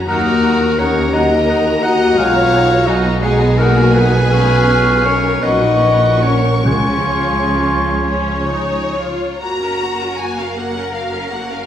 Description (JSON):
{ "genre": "classical, slow romantic movement for symphony orchestra", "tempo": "42-58 BPM (dotted quarters)", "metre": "6/8", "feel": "rubato", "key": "F# major", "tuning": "A4 = 441 Hz", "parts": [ { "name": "warm symphonic violin section", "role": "melody", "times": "0.0-11.7 s", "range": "C#5 to C#6", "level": "-25 LUFS", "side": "left 3 dB", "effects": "none" }, { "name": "rich symphonic viola section", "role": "accompaniment", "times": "0.0-11.7 s", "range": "F#3 to A#4", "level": "-24 LUFS", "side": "right 1 dB", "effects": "none" }, { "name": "dark symphonic cello section", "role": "bass", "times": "0.0-11.7 s", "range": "D#2 to A#4", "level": "-23 LUFS", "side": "right 1 dB", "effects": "none" }, { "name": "warm symphonic double bass section", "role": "bass", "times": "0.0-11.7 s", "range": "F#1 to D#2", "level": "-21 LUFS", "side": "right 2 dB", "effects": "none" }, { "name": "clear clarinet", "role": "second line", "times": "0.1-8.9 s", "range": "E#4 to F#5", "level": "-18 LUFS", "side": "left 2 dB", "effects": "none" }, { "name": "mellow hollow silver concert flute", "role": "second line", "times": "0.1-9.0 s", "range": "G#5 to C#6", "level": "-25 LUFS", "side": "left 1 dB", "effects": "none" }, { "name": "warm oboe", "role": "second line", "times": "0.1-9.0 s", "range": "E#5 to G#5", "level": "-23 LUFS", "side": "equal", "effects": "none" }, { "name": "warm symphonic violin section", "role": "second line", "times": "0.1-11.7 s", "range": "C#4 to A#5", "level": "-24 LUFS", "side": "left 2 dB", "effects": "none" }, { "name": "mellow French horn section", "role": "sustained chords", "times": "0.1-8.9 s", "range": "E#3 to F#4", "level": "-19 LUFS", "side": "left 2 dB", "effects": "none" }, { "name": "mellow tuba", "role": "bass", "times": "0.1-9.2 s", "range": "A#1 to D#2", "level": "-23 LUFS", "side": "right 2 dB", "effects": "none" }, { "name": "timpani", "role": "percussion", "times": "6.7-8.0 s", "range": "C#3", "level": "-22 LUFS", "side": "equal", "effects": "none" } ], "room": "wet recital hall reverb, RT60 1.5 s", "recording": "recorded in a church or concert hall", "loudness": "-12 LUFS", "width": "side -10 dB against mid", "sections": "0.0-9.4 A section; 9.4-11.7 B section", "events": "none", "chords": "0.1 D#m; 2.2 G#m7/B; 4.3 C#7/B; 5.4 F#/A#; 6.7 C#; 9.4 F#" }